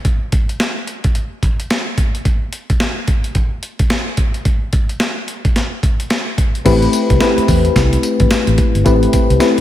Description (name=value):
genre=R&B, new jack swing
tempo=109 BPM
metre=4/4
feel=swing 61% on 16ths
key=A minor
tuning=A4 = 440 Hz
part: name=breakbeat sampler-style drum kit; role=drums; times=0.0-9.6 s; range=crash cymbal, hi-hat, kick drum, snare drum, tambourine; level=-15 LUFS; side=equal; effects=none
part: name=mellow FM electric piano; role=accompaniment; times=6.6-9.6 s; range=A3 to B4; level=-14 LUFS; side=left 3 dB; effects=chorus, slapback echo
part: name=vintage muted fingered electric bass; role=bass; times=6.7-9.6 s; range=G1 to E2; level=-15 LUFS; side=equal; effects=none
room=light reverb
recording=none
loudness=-13 LUFS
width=side -12 dB against mid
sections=0.0-6.7 A section; 6.7-9.6 B section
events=none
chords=0.0 N.C.; 6.7 Am9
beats=| 0.05 0.60 1.15 1.70 | 2.25 2.80 3.35 3.90 | 4.45 5.00 5.55 6.11 | 6.66 7.21 7.76 8.31 | 8.86 9.41